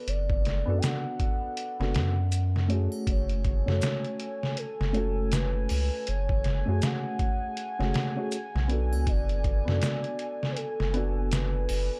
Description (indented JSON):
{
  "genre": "trip hop",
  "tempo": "80 BPM",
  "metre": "4/4",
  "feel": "swing 60% on 16ths",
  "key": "F# minor",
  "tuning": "A4 = 440 Hz",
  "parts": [
    { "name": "pure breathy sine lead", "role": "melody", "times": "0.0-12.0 s", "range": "A4 to G#5", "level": "-38 LUFS", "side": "equal", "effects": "chorus, cassette tape, dub echo" },
    { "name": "dark upright piano", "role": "accompaniment", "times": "0.0-12.0 s", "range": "A3 to A4", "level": "-37 LUFS", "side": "equal", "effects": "harmonic tremolo, tape echo" },
    { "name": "round analog bass", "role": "bass", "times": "0.1-11.9 s", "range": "F#1 to F#2", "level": "-30 LUFS", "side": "equal", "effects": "tube saturation" },
    { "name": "trip hop sampler-style drum kit", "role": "drums", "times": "0.1-11.9 s", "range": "hi-hat, kick drum, snare drum", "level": "-32 LUFS", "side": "equal", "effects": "none" },
    { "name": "maracas and triangle", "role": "percussion", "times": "0.8-11.9 s", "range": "none", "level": "-48 LUFS", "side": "equal", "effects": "none" },
    { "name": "warbly tape-like pad", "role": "sustained chords", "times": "3.4-12.0 s", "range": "G#5", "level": "-45 LUFS", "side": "equal", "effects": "chorus, built-in reverb" }
  ],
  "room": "little or no reverb",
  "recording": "dark, warm production",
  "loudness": "-28 LUFS",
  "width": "mono",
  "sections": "0.0-12.0 A section",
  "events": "none",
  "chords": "0.0 F#madd9",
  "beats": "| 0.07 0.82 1.57 2.32 | 3.07 3.82 4.57 5.32 | 6.07 6.82 7.57 8.32 | 9.07 9.82 10.57 11.32"
}